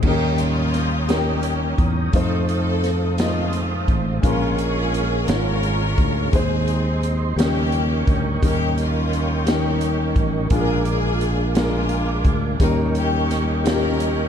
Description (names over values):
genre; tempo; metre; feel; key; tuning
slow gospel; 57 BPM (dotted quarters); 6/8; straight; unclear; A4 = 441 Hz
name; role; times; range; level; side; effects
warm grand piano; accompaniment; 0.0-14.3 s; Ab2 to Eb5; -25 LUFS; left 2 dB; none
mellow tonewheel organ; sustained chords; 0.0-14.3 s; Ab4 to Eb6; -29 LUFS; right 4 dB; slow rotary speaker, chorus vibrato
fingered electric bass; bass; 0.0-14.3 s; Ab1 to F2; -22 LUFS; equal; none
swinging big-band drum kit; drums; 0.0-14.2 s; crash cymbal, hi-hat, kick drum, snare drum; -24 LUFS; equal; none
bright studio string section; melody; 0.1-14.3 s; G3 to Bb4; -26 LUFS; left 2 dB; none
room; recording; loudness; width
little or no reverb; dark, warm production, lossy compression artefacts; -18 LUFS; side -8 dB against mid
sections
0.0-14.3 A section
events
none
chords
0.0 Eb7; 2.1 F7; 4.2 Bbm7; 5.3 Db/Ab; 6.3 Ab/Eb; 7.4 Eb7; 10.5 Bb7; 12.6 Eb7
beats
| 0.04 1.09 | 2.14 3.19 | 4.23 5.28 | 6.33 7.38 | 8.42 9.47 | 10.51 11.56 | 12.61 13.65